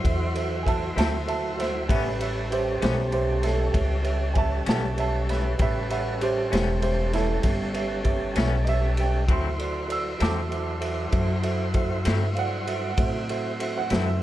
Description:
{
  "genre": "slow blues",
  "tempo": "65 BPM (dotted quarters)",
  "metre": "12/8",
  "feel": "straight",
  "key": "unclear",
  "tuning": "A4 = 440 Hz",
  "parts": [
    { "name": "tine electric piano", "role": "accompaniment", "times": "0.0-14.2 s", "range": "F#4 to G5", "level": "-31 LUFS", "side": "right 4 dB", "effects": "none" },
    { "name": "tonewheel organ", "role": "sustained chords", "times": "0.0-14.2 s", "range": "F#3 to C5", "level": "-33 LUFS", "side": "equal", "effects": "slow rotary speaker" },
    { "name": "upright bass", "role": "bass", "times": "0.0-14.2 s", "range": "E1 to A2", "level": "-27 LUFS", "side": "equal", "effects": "none" },
    { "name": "raw garage drum kit", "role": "drums", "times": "0.0-14.1 s", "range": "kick drum, ride cymbal, snare drum", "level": "-28 LUFS", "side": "equal", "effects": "none" },
    { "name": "clear upright piano", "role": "second line", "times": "0.6-14.2 s", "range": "E4 to E6", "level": "-30 LUFS", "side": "right 3 dB", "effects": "none" },
    { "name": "clean electric guitar", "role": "accompaniment", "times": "1.0-14.1 s", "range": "A2 to E4", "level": "-34 LUFS", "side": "left 8 dB", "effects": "harmonic tremolo" }
  ],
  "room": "little or no reverb",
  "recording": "dark, warm production",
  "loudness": "-22 LUFS",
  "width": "side -14 dB against mid",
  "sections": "0.0-14.2 A section",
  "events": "upright piano solo 0.0-14.2",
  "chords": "0.0 D9; 1.9 A9; 9.3 D9"
}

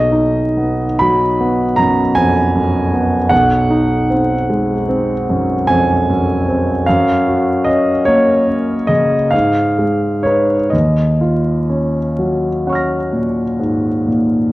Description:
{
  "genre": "classical, impressionist solo piano",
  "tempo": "41-53 BPM (dotted quarters)",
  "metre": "9/8",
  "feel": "rubato",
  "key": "unclear",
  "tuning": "A4 = 437 Hz",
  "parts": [
    { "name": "warm concert grand piano", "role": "solo", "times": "0.0-14.5 s", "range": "B1 to Bb6", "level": "-12 LUFS", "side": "equal", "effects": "none" }
  ],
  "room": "moderate scoring stage reverb, RT60 1.5 s",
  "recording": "worn, warbling old tape, cassette tape, vinyl crackle, warbly pitch drift",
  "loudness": "-12 LUFS",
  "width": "side -17 dB against mid",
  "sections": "0.0-14.5 A section",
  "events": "none",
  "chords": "0.0 B; 3.3 Ab7/Cb; 6.9 Gbmaj7; 9.3 Abm6; 10.7 Ebm9"
}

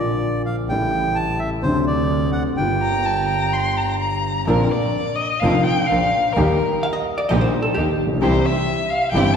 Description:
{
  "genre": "tango",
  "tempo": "128 BPM",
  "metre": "4/4",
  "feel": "rubato",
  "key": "G minor, Bb major from 4.5 s",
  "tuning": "A4 = 440 Hz",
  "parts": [
    { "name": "bandoneon", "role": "melody", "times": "0.0-4.0 s", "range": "C5 to A5", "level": "-23 LUFS", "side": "right 3 dB", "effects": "none" },
    { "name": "dark grand piano", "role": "accompaniment", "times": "0.0-9.3 s", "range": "F1 to G4", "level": "-21 LUFS", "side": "left 1 dB", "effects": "none" },
    { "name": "clear double bass", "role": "bass", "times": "0.0-9.3 s", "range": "F1 to Eb2", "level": "-26 LUFS", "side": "right 1 dB", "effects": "none" },
    { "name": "warm violin", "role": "second line", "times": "2.8-9.4 s", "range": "Bb4 to C6", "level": "-22 LUFS", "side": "left 2 dB", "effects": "none" },
    { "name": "warm chamber string section", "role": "stabs", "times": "4.5-9.3 s", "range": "Bb3 to Bb4", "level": "-27 LUFS", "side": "right 4 dB", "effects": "none" },
    { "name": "vintage hollow-body jazz guitar", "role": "second line", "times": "6.8-8.1 s", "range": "G4 to F5", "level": "-24 LUFS", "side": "equal", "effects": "none" }
  ],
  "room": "wet concert hall reverb, RT60 1.8 s",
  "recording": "recorded in a church or concert hall",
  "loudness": "-17 LUFS",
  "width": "side -7 dB against mid",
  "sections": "0.0-4.5 A section; 4.5-9.4 B section",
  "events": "violin solo 4.5-9.4",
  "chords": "0.0 Bb; 0.7 A7; 1.6 D7; 2.6 Gm7; 4.5 Bbadd9; 6.4 Eb; 8.2 C"
}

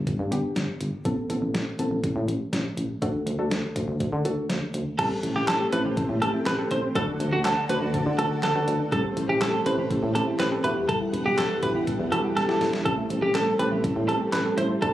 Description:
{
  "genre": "synth-pop",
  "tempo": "122 BPM",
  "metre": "4/4",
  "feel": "straight",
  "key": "unclear",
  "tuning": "A4 = 444 Hz",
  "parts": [
    { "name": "soft round pluck", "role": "accompaniment", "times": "0.0-14.9 s", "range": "B3 to C5", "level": "-31 LUFS", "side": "left 1 dB", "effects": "chorus" },
    { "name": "solid FM bass", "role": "bass", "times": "0.0-14.9 s", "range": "E1 to D3", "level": "-28 LUFS", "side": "equal", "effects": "none" },
    { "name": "detuned 8-bit digital drum machine", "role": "drums", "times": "0.1-14.9 s", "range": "crash cymbal, handclaps, hi-hat, kick drum, snare drum", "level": "-32 LUFS", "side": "equal", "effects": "none" },
    { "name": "twelve-string electric guitar", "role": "second line", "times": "5.0-14.9 s", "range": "F#4 to C5", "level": "-26 LUFS", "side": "right 1 dB", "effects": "digital delay" },
    { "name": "ensemble organ-string", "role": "sustained chords", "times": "5.0-14.9 s", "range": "D3 to F#5", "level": "-31 LUFS", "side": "right 1 dB", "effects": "phaser, ensemble chorus" },
    { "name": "soft round pluck", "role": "arpeggios", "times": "5.0-14.9 s", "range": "F#3 to F#5", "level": "-31 LUFS", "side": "left 1 dB", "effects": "chorus, digital delay" }
  ],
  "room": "light reverb",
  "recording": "recorded on a phone in the room, club reverb, compression",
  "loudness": "-23 LUFS",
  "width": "side -13 dB against mid",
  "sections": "0.0-5.0 A section; 5.0-14.9 B section",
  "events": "drum fill 12.4-12.9",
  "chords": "0.0 G; 1.1 Amadd9; 3.0 D; 5.0 Am7; 7.0 D; 8.9 Am7; 10.6 Emadd9; 12.9 Am7"
}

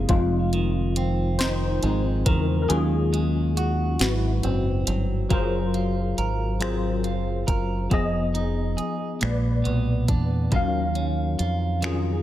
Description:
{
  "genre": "slow six-eight R&B",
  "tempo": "46 BPM (dotted quarters)",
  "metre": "6/8",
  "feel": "straight",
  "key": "unclear",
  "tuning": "A4 = 440 Hz",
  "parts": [
    { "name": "clean electric guitar", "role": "second line", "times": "0.0-12.2 s", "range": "F2 to Bb4", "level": "-28 LUFS", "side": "right 3 dB", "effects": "none" },
    { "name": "tine electric piano", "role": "accompaniment", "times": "0.0-12.2 s", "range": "Bb2 to F5", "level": "-27 LUFS", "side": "left 3 dB", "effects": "ensemble chorus" },
    { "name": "deep dub fingered electric bass", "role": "bass", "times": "0.0-12.2 s", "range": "F1 to F2", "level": "-25 LUFS", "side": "equal", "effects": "none" },
    { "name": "smooth R&B drum kit", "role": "drums", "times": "0.1-12.0 s", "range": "finger snaps, hi-hat, kick drum, snare drum", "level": "-26 LUFS", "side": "equal", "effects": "none" }
  ],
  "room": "digital ambience",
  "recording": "none",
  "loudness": "-21 LUFS",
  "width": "side -13 dB against mid",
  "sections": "0.0-5.3 A section; 5.3-12.2 B section",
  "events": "tine electric piano solo 0.0-5.3; kick muted 2.7-5.3",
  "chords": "0.1 Fm7; 2.7 Ebm11; 4.0 Ab7alt; 5.3 Gbmaj9#11; 7.9 Fm7b5; 9.2 Bb7b9; 10.5 Ebm9"
}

